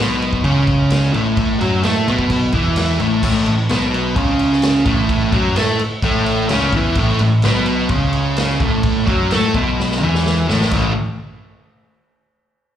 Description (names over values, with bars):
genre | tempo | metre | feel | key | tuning
garage rock duo or trio | 128 BPM | 4/4 | straight | A major | A4 = 441 Hz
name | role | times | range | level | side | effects
fuzz guitar | riff | 0.0-10.9 s | A2 to A4 | -16 LUFS | equal | distortion
growling picked electric bass | bass | 0.0-10.9 s | A1 to A2 | -20 LUFS | equal | overdrive
vintage drum kit | drums | 0.0-10.8 s | crash cymbal, kick drum, snare drum | -21 LUFS | equal | none
room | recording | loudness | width
light reverb, studio reverb | live gig heard through the venue's PA, club reverb | -14 LUFS | side -10 dB against mid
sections
0.0-3.2 A section; 3.2-10.7 B section; 10.7-12.6 C section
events
drum fill 9.8-10.7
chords
0.0 A; 10.7 A5